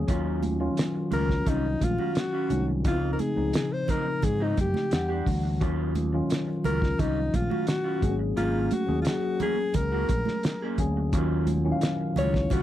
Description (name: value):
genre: lush 1970s-style soul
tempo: 87 BPM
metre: 4/4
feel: straight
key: Eb dorian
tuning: A4 = 441 Hz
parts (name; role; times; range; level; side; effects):
- mellow tine electric piano; accompaniment; 0.0-12.6 s; Db3 to F#5; -29 LUFS; left 2 dB; phaser
- overdriven fingered electric bass; bass; 0.0-12.6 s; Ab1 to Ab2; -29 LUFS; equal; none
- electric guitar through a small old amp; riff; 0.1-12.6 s; F3 to Ab4; -34 LUFS; right 3 dB; none
- cloth-damped thuddy drum kit; drums; 0.1-12.6 s; hi-hat, kick drum, snare drum; -28 LUFS; equal; none
- congas; percussion; 0.4-12.6 s; none; -35 LUFS; right 7 dB; none
- warm alto saxophone; melody; 1.1-12.6 s; Eb4 to Db5; -29 LUFS; left 2 dB; none
room: light reverb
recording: dry, close 1970s-style studio recording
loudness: -24 LUFS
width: side -12 dB against mid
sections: 0.0-12.6 A section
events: none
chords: 0.1 Ebm9; 2.8 Dbmaj9; 4.9 Em9; 5.6 Ebm9; 8.0 Ab9sus4; 11.1 Ebm9